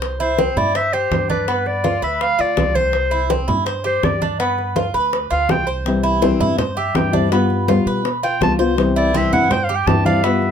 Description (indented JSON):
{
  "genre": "latin, Cuban son and guajira",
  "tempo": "164 BPM",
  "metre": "4/4",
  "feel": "straight",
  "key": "C major",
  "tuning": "A4 = 438 Hz",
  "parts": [
    { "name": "Cuban tres", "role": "arpeggios", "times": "0.0-10.5 s", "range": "B3 to C5", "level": "-22 LUFS", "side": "right 4 dB", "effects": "none" },
    { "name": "upright bass", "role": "bass", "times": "0.0-10.5 s", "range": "C2 to B2", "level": "-24 LUFS", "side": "equal", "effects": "none" },
    { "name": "bongos", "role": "percussion", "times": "0.0-10.5 s", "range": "none", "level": "-24 LUFS", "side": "left 4 dB", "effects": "none" },
    { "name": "congas", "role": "percussion", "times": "0.0-10.5 s", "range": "none", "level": "-24 LUFS", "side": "right 1 dB", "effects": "none" },
    { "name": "warm clarinet", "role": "melody", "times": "0.2-10.5 s", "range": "B4 to A5", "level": "-20 LUFS", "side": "left 1 dB", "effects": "none" },
    { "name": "nylon-string guitar", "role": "accompaniment", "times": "5.9-10.5 s", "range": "C3 to F4", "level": "-18 LUFS", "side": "left 4 dB", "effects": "none" }
  ],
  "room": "moderate studio reverb, RT60 0.5 s",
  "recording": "minimal, uncompressed stereo recording",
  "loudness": "-15 LUFS",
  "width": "side -8 dB against mid",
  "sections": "0.0-10.5 A section",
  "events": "clarinet solo 0.0-10.5",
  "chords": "0.0 C; 1.5 G7; 2.9 C; 4.4 G7; 5.9 C; 7.3 G7; 8.8 C"
}